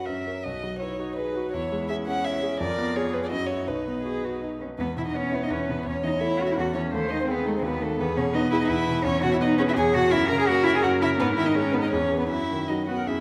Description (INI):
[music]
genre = quick classical-period movement for piano quartet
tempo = 167 BPM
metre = 3/4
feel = rubato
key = B major, E major from 4.8 s, B major from 9.1 s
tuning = A4 = 440 Hz
[part]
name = dark violin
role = melody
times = 0.0-13.2 s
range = A4 to A#5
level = -33 LUFS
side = equal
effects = none
[part]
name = warm cello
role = second line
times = 0.0-13.2 s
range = A3 to A#4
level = -29 LUFS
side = equal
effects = none
[part]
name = clear concert grand piano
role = accompaniment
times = 0.0-13.2 s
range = B1 to D#5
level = -30 LUFS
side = equal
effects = none
[part]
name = warm viola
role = accompaniment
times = 0.0-13.2 s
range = D#4 to C#5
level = -35 LUFS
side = equal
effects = none
[sound]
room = wet recital hall reverb, RT60 1.4 s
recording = none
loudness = -25 LUFS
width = mono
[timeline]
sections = 0.0-4.8 A section; 4.8-13.2 B section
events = none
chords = 0.1 F#; 0.4 B; 1.5 C#m/E; 2.6 Fdim7; 3.3 F#5; 3.7 B; 4.8 E5; 5.9 A6/E; 6.9 B13b9/D#; 8.0 E; 10.1 F#; 11.2 G#5; 11.9 C#m7/E; 12.3 B/F#